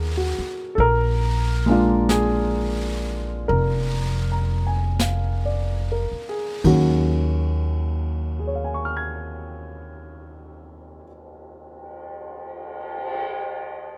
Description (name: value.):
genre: jazz ballad.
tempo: 35-48 BPM.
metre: 4/4.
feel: swing 69% on 8ths.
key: Eb minor.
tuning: A4 = 440 Hz.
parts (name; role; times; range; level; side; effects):
dark concert grand piano; accompaniment; 0.0-14.0 s; Eb2 to Ab6; -25 LUFS; equal; none.
upright bass; bass; 0.0-11.0 s; F1 to Eb2; -26 LUFS; equal; none.
jazz brush drum kit; drums; 0.8-13.2 s; brushed snare drum, cymbal swell, hi-hat, kick drum, ride cymbal, snare drum; -34 LUFS; equal; none.
room: little or no reverb.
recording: close, detailed microphones.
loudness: -23 LUFS.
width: mono.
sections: 0.0-6.6 A section; 6.6-13.6 B section.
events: slowing down 0.0-6.6.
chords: 0.0 Abm9; 0.8 Bb7; 6.6 Ebm9.